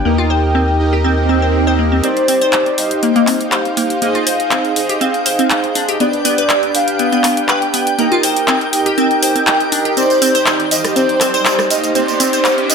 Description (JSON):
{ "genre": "progressive house", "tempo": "121 BPM", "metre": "4/4", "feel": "straight", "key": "C minor", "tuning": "A4 = 441 Hz", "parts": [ { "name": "warm velvety synth lead", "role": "melody", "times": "0.0-12.7 s", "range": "C5 to G5", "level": "-18 LUFS", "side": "left 1 dB", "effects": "chorus, tape echo" }, { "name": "soft supersaw", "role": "stabs", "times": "0.0-12.7 s", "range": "D4 to G5", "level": "-18 LUFS", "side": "right 3 dB", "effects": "cassette tape, ping-pong delay" }, { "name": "saturated sub bass", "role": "bass", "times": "0.0-12.7 s", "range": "Eb1 to G2", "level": "-22 LUFS", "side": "left 1 dB", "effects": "high-pass filter" }, { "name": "glassy wavetable pluck", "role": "arpeggios", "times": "0.1-12.4 s", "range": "Bb3 to C5", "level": "-18 LUFS", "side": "left 2 dB", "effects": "chorus, phaser, ping-pong delay" }, { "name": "swell and riser", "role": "sound effects", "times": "1.2-2.0, 10.6-12.7 s", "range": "none", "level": "-22 LUFS", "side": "right 5 dB", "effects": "none" }, { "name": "big-room dance drum kit", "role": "drums", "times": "2.0-12.7 s", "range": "handclaps, hi-hat, rim click, tambourine", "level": "-17 LUFS", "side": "equal", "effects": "none" }, { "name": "twinkling granular texture", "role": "texture", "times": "2.7-12.7 s", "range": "G5 to G6", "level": "-27 LUFS", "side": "left 2 dB", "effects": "built-in reverb" } ], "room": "wet digital room reverb, RT60 1.1 s", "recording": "none", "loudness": "-12 LUFS", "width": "side -6 dB against mid", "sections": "0.0-2.0 A section; 2.0-12.7 B section", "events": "swell 1.2-2.0; build-up 2.0-12.7; riser 10.6-12.7", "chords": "0.1 Eb; 2.0 Cmadd9; 4.0 Ab; 6.0 G; 8.0 Eb; 10.0 Cmadd9; 12.0 Ab" }